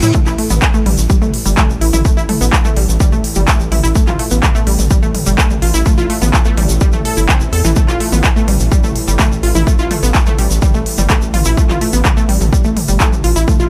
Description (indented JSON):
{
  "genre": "melodic techno",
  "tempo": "126 BPM",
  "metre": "4/4",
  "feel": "straight",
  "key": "unclear",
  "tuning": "A4 = 440 Hz",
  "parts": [
    { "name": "unison pluck", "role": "arpeggios", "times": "0.0-13.7 s", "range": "E3 to A4", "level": "-21 LUFS", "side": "equal", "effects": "sidechain pumping, digital delay" },
    { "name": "round analog bass", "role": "bass", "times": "0.0-13.7 s", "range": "G1 to A2", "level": "-18 LUFS", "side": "equal", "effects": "sidechain pumping" },
    { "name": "analog drone", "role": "drone", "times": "0.0-13.7 s", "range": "A2 to E3", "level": "-29 LUFS", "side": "equal", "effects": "none" },
    { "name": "techno drum kit", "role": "drums", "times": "0.0-13.6 s", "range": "handclaps, hi-hat, toms", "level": "-21 LUFS", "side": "equal", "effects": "overdrive, studio reverb" },
    { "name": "tube shaker", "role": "percussion", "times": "0.0-13.7 s", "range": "none", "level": "-26 LUFS", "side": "equal", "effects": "none" },
    { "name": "electronic kick drum", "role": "drums", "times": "0.1-13.6 s", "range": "none", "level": "-16 LUFS", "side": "equal", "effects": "overdrive, studio reverb" }
  ],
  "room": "little or no reverb",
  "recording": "none",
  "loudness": "-13 LUFS",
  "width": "mono",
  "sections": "0.0-13.7 A section",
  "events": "none",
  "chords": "0.1 A5; 4.0 N.C.; 7.8 Gsus2",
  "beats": "| 0.14 0.62 1.10 1.57 | 2.05 2.53 3.00 3.48 | 3.96 4.43 4.91 5.38 | 5.86 6.34 6.81 7.29 | 7.76 8.24 8.72 9.19 | 9.67 10.14 10.62 11.10 | 11.57 12.05 12.53 13.00 | 13.48"
}